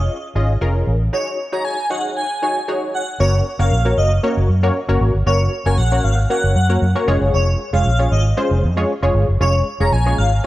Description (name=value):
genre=dance-pop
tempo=116 BPM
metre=4/4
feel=straight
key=unclear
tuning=A4 = 440 Hz
part: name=funky polysynth comp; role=accompaniment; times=0.0-10.5 s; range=Ab3 to Eb5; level=-21 LUFS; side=left 1 dB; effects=chorus
part: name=vintage muted fingered electric bass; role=bass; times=0.0-10.4 s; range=F1 to Gb2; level=-16 LUFS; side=equal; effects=none
part: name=airy dreamy lead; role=melody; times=1.1-10.5 s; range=Db5 to Bb5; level=-22 LUFS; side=equal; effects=chorus, phaser, digital delay
room=light reverb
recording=worn, warbling old tape, cassette tape, warbly pitch drift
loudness=-15 LUFS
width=side -16 dB against mid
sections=0.0-3.2 A section; 3.2-10.5 B section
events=break 1.1-3.2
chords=0.0 Db; 1.1 Ab7sus4; 3.2 Gb; 7.1 Db/F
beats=0.10 0.61 | 1.13 1.65 2.17 2.68 | 3.20 3.72 4.23 4.75 | 5.27 5.79 6.30 6.82 | 7.34 7.85 8.37 8.89 | 9.41 9.92 10.44